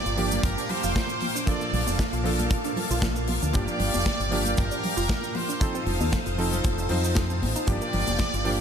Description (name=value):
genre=nu-disco, nu disco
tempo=116 BPM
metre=4/4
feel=swing 54% on 16ths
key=G minor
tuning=A4 = 441 Hz
part: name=brilliant trumpet section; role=melody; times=0.0-8.6 s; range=Bb4 to D5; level=-31 LUFS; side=right 2 dB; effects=diffuse ambient delay
part: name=clear electric grand piano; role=accompaniment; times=0.0-8.6 s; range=F3 to C5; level=-31 LUFS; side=right 1 dB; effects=ping-pong delay
part: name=string machine, full ensemble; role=sustained chords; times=0.0-8.6 s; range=Bb3 to Eb6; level=-32 LUFS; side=equal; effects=ensemble chorus, sidechain pumping
part: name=wide unison pluck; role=arpeggios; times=0.1-8.6 s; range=F3 to A4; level=-34 LUFS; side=right 3 dB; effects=vintage 12-bit sampler grit, sidechain pumping, diffuse ambient delay
part: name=deep dub fingered electric bass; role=bass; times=0.1-8.6 s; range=F1 to F2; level=-28 LUFS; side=equal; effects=none
part: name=big rock drum kit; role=drums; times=0.1-8.6 s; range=cabasa, hi-hat, snare drum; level=-32 LUFS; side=left 2 dB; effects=none
part: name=congas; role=percussion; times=0.3-8.2 s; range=none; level=-36 LUFS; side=left 2 dB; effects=none
part: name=kick drum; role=drums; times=0.4-8.3 s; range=none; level=-29 LUFS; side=equal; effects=none
room=moderate lush hall reverb, RT60 1.7 s, small room ambience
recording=dreamy mix soaked in reverb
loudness=-23 LUFS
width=side -8 dB against mid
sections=0.0-8.6 A section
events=none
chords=0.0 Gm7; 1.2 Bbmaj7; 3.5 Gm7; 5.6 F7; 7.7 Gm7